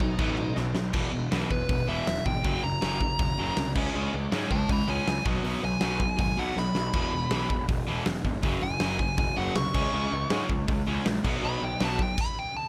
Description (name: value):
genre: punk rock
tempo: 160 BPM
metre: 4/4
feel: straight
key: E lydian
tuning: A4 = 440 Hz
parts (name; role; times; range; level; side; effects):
- dark smooth lead guitar; melody; 0.0-12.7 s; D#4 to C#6; -34 LUFS; equal; overdrive
- crunchy overdriven guitar; riff; 0.0-12.2 s; E2 to C#4; -35 LUFS; equal; none
- distorted electric guitar; riff; 0.0-12.2 s; E2 to C#4; -36 LUFS; equal; overdrive
- fuzz picked electric bass; bass; 0.0-12.0 s; E1 to G#2; -35 LUFS; equal; overdrive
- big rock drum kit; drums; 0.0-12.3 s; crash cymbal, hi-hat, kick drum, snare drum; -32 LUFS; equal; none
room: light reverb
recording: none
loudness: -28 LUFS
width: mono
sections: 0.9-12.7 A section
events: drum fill 0.6-0.9, 6.6-6.9; lead electric guitar solo 0.9-12.7; stop 12.2-12.7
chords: 0.0 B; 0.9 E5; 2.4 F#; 3.8 C#5; 5.3 B5; 6.9 E5; 8.4 F#5; 9.7 C#5; 11.2 B5